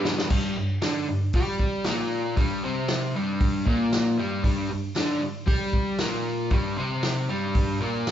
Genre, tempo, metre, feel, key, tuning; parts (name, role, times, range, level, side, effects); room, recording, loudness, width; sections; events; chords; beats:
garage rock duo or trio; 116 BPM; 4/4; straight; A4 = 440 Hz
overdriven semi-hollow guitar; riff; 0.0-8.1 s; G2 to B4; -25 LUFS; equal
vintage drum kit; drums; 0.1-8.1 s; crash cymbal, hi-hat, kick drum, snare drum; -26 LUFS; equal
tambourine; percussion; 0.1-8.1 s; -42 LUFS; right 4 dB
moderate large studio reverb, RT60 0.9 s; band playing live in one room, nothing above 7.7 kHz; -23 LUFS; side -10 dB against mid
0.3-8.1 A section
drum fill 0.0-0.3
0.3 G5
| 0.30 0.82 1.34 1.86 | 2.38 2.89 3.41 3.93 | 4.45 4.97 5.49 6.00 | 6.52 7.04 7.56 8.08